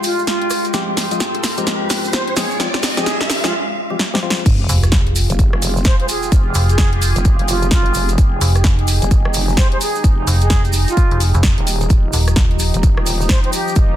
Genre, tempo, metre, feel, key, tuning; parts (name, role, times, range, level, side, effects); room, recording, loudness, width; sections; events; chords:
bass house; 129 BPM; 4/4; swing 61% on 16ths; F minor; A4 = 439 Hz
mellow concert flute; melody; 0.0-13.7 s; F4 to C5; -24 LUFS; right 2 dB; tape echo
sweeping resonant pad; sustained chords; 0.0-14.0 s; F3 to F5; -25 LUFS; equal; chorus, sidechain pumping
house drum kit; drums; 0.0-13.9 s; crash cymbal, hi-hat, rim click, snare drum; -21 LUFS; equal; soft clipping on snare
maracas; percussion; 0.0-13.9 s; -28 LUFS; right 6 dB
riser and sub drop; sound effects; 0.0-6.3 s; -25 LUFS; equal
warbly tape-like pad; texture; 0.0-3.5, 13.0-14.0 s; Ab3 to C6; -27 LUFS; left 2 dB; chorus, built-in reverb, sidechain pumping
percussive organ stab; stabs; 0.7-4.4 s; F3 to Ab4; -24 LUFS; left 3 dB; chorus, sidechain pumping, tape echo
vowel-sweep wobble bass; bass; 4.5-14.0 s; Eb1 to Ab1; -20 LUFS; equal; chorus, tube saturation, sidechain pumping
electronic kick drum; drums; 4.5-13.9 s; -14 LUFS; equal
metallic FM bass; bass; 4.7-12.7 s; Eb1 to F1; -15 LUFS; equal; tube saturation, sidechain pumping
light reverb; dense, heavily limited modern master; -13 LUFS; side -12 dB against mid
0.0-4.5 A section; 4.5-14.0 B section
build-up 0.0-4.5; drum fill 0.0-3.5, 4.0-4.5; riser 0.0-3.5; drop 4.5-14.0; impact 4.5-6.3
0.0 Fmadd9; 11.9 Ebadd9